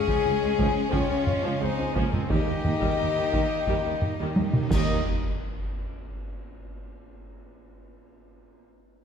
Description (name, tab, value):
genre	cinematic, epic orchestral film score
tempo	87 BPM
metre	4/4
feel	straight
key	Eb mixolydian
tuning	A4 = 440 Hz
part	warm symphonic violin section	melody	0.0-5.1 s	G4 to Eb5	-39 LUFS	left 6 dB	none
part	mellow hollow silver concert flute	second line	0.0-4.7 s	F5 to Ab5	-37 LUFS	left 3 dB	none
part	rich studio violin section	second line	0.0-5.1 s	G3 to Eb4	-35 LUFS	left 2 dB	none
part	mellow French horn section	sustained chords	0.0-5.0 s	Ab4 to Eb5	-29 LUFS	left 9 dB	none
part	bright trumpet section	stabs	0.0-5.0 s	C4 to Eb5	-35 LUFS	right 1 dB	none
part	rich symphonic cello section	bass	0.0-5.1 s	Eb3 to Eb4	-34 LUFS	right 2 dB	none
part	rich symphonic viola section	accompaniment	0.1-5.1 s	Db3 to G3	-35 LUFS	right 2 dB	none
part	rich symphonic double bass section	bass	0.1-5.1 s	Db2 to Eb2	-34 LUFS	right 4 dB	none
part	solo taiko drums	drums	0.1-6.0 s	none	-28 LUFS	equal	none
part	mellow tuba	bass	0.2-5.0 s	Db2 to Eb2	-32 LUFS	right 4 dB	none
part	cymbal swell, clash cymbals and concert bass drum	percussion	2.3-6.0 s	none	-34 LUFS	equal	none
part	impact	sound effects	4.7-7.5 s	none	-39 LUFS	equal	none
room	wet scoring stage reverb, RT60 1.8 s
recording	none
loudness	-23 LUFS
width	side -7 dB against mid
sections	0.0-5.1 A section; 5.1-7.8 B section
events	drum fill 4.4-5.1; band accent 5.1-5.7; impact 5.1-7.8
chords	0.0 Db; 2.3 Eb; 5.1 N.C.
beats	0.25 0.94 1.62 | 2.31 3.00 3.69 4.37 | 5.06 5.75 6.43 7.12